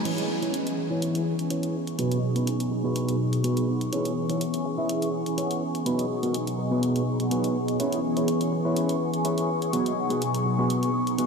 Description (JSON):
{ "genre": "filtered disco house", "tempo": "124 BPM", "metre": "4/4", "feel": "straight", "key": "unclear", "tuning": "A4 = 440 Hz", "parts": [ { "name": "mellow synth brass", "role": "accompaniment", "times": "0.0-11.3 s", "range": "B2 to B4", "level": "-25 LUFS", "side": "equal", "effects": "chorus, phaser, low-pass filter" }, { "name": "warm chamber string section", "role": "sustained chords", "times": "0.0-11.3 s", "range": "C#6", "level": "-36 LUFS", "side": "left 4 dB", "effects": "vintage 12-bit sampler grit, low-pass filter" }, { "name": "mellow electric guitar", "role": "riff", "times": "0.1-11.3 s", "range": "B3 to E5", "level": "-30 LUFS", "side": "right 1 dB", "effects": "low-pass filter" }, { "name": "punchy analog drum machine", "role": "drums", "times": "0.1-11.3 s", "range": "crash cymbal, hi-hat", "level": "-37 LUFS", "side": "equal", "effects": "small room reverb" } ], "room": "wet huge ambient reverb, RT60 4.7 s", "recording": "dreamy mix soaked in reverb", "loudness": "-24 LUFS", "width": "side -5 dB against mid", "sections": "0.1-11.3 A section", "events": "band accent 0.0; filter sweep 0.1-11.3", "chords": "0.1 C#m7; 2.0 G#m7/B; 3.9 C#m7; 5.9 G#m7/B; 7.8 C#m7; 9.7 G#m7/B" }